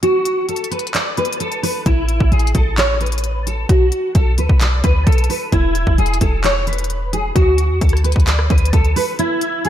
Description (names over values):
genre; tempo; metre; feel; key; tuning
hip hop, trap; 131 BPM; 4/4; half-time; unclear; A4 = 444 Hz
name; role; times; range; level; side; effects
fingerpicked steel-string acoustic guitar; melody; 0.0-9.7 s; E4 to D5; -19 LUFS; right 1 dB; ensemble chorus, low-pass filter, ping-pong delay
trap drum kit; drums; 0.0-9.7 s; handclaps, hi-hat, kick drum, rim click; -18 LUFS; equal; none
clean 808-style bass; bass; 1.9-9.0 s; E1 to E2; -16 LUFS; equal; none
room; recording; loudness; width
light reverb; none; -14 LUFS; side -11 dB against mid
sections
0.0-9.7 A section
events
break 0.0-1.9, 9.2-9.7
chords
0.0 N.C.; 1.9 Asus2; 3.7 Bm; 5.5 E5; 7.4 D; 9.2 N.C.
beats
| 0.03 0.49 0.94 1.40 | 1.86 2.32 2.78 3.23 | 3.69 4.15 4.61 5.07 | 5.52 5.98 6.44 6.90 | 7.36 7.82 8.27 8.73 | 9.19 9.65